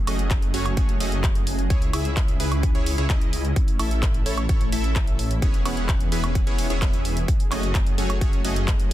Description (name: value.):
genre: EDM, festival progressive house.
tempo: 129 BPM.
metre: 4/4.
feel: straight.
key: unclear.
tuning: A4 = 440 Hz.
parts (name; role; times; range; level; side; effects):
lush unison pad; sustained chords; 0.0-8.9 s; C#3 to G#4; -31 LUFS; equal; chorus, phaser, sidechain pumping.
supersaw stab; riff; 0.1-8.9 s; A3 to F#5; -29 LUFS; right 1 dB; vintage 12-bit sampler grit, sidechain pumping, tape echo.
detuned saw bass; bass; 0.1-8.9 s; E1 to C#2; -26 LUFS; equal; tube saturation, sidechain pumping.
big-room dance drum kit; drums; 0.1-8.9 s; handclaps, hi-hat, woodblock; -31 LUFS; right 1 dB; none.
electronic kick drum; drums; 0.3-8.8 s; none; -22 LUFS; equal; none.
room: little or no reverb.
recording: dense, heavily limited modern master.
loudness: -20 LUFS.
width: side -14 dB against mid.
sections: 0.0-8.9 A section.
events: none.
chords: 0.0 F#madd9; 1.7 C#m; 3.6 A; 5.4 E6; 7.3 F#madd9.